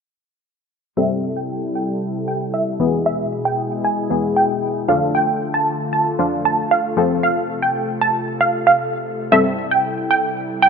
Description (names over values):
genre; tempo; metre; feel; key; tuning
pop; 115 BPM; 4/4; straight; A minor; A4 = 439 Hz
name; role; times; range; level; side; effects
wide unison pluck; melody; 1.0-10.7 s; E5 to A5; -18 LUFS; right 2 dB; low-pass filter
punchy chord stab; accompaniment; 1.0-10.7 s; E3 to A4; -22 LUFS; left 3 dB; chorus, low-pass filter
soft supersaw; sustained chords; 1.0-10.7 s; B2 to A4; -24 LUFS; left 2 dB; low-pass filter
room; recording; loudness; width
moderate lush hall reverb, RT60 2.5 s; rough home demo mix; -17 LUFS; side -6 dB against mid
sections
1.0-10.7 A section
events
filter sweep 1.0-10.7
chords
1.0 Am7; 2.8 E; 4.9 Dm; 7.0 F; 9.3 Am7